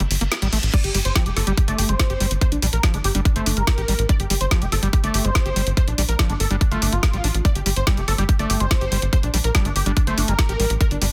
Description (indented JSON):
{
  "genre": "psychedelic trance",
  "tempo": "143 BPM",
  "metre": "4/4",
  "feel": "straight",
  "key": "G minor",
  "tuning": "A4 = 439 Hz",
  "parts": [
    { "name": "overdriven acid bass", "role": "riff", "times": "0.0-11.1 s", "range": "F3 to G4", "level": "-31 LUFS", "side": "equal", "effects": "distortion, sidechain pumping, dub echo" },
    { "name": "tight sequencer bass", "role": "bass", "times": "0.0-11.1 s", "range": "F1 to Bb1", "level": "-24 LUFS", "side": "equal", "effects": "none" },
    { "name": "drum and bass drum kit", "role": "drums", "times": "0.0-11.1 s", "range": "crash cymbal, hi-hat, snare drum", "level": "-27 LUFS", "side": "equal", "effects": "none" },
    { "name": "reverse cymbal", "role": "sound effects", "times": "0.1-0.7 s", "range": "none", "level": "-34 LUFS", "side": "equal", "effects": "none" },
    { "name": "unison lead", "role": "melody", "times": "0.7-11.1 s", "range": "D4 to D5", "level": "-30 LUFS", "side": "equal", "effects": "phaser, sidechain pumping, dub echo" },
    { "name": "electronic kick drum", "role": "drums", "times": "0.7-10.9 s", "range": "none", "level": "-20 LUFS", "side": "equal", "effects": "none" }
  ],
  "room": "digital ambience",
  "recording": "dense, heavily limited modern master",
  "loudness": "-20 LUFS",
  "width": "mono",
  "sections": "0.7-11.1 A section",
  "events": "break 0.0-0.7; reverse cymbal 0.1-0.7; drop 0.7-11.1",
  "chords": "0.0 Fadd9 (rootless); 0.7 G5",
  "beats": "0.32 | 0.74 1.16 1.57 2.00 | 2.41 2.83 3.25 3.67 | 4.09 4.51 4.93 5.35 | 5.77 6.19 6.61 7.03 | 7.45 7.87 8.29 8.71 | 9.13 9.55 9.97 10.39 | 10.81"
}